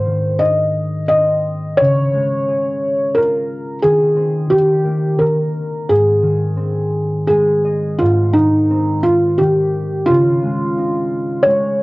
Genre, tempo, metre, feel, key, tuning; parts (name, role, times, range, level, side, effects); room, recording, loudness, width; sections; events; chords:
children's music, lullaby; 87 BPM; 3/4; rubato; Ab major; A4 = 437 Hz
felt-muted upright piano; melody; 0.0-11.8 s; Eb4 to Eb5; -15 LUFS; equal; cassette tape
concert harp; accompaniment; 0.0-11.8 s; Ab2 to Ab5; -19 LUFS; equal; cassette tape
light reverb, small room ambience; home recording on cassette; -14 LUFS; side -21 dB against mid
0.0-8.0 A section; 8.0-11.8 A section
harp fill 6.9-8.0
0.0 Ab; 1.8 Db; 3.8 Ab/Eb; 4.5 Eb; 5.9 Ab; 10.1 Dbsus2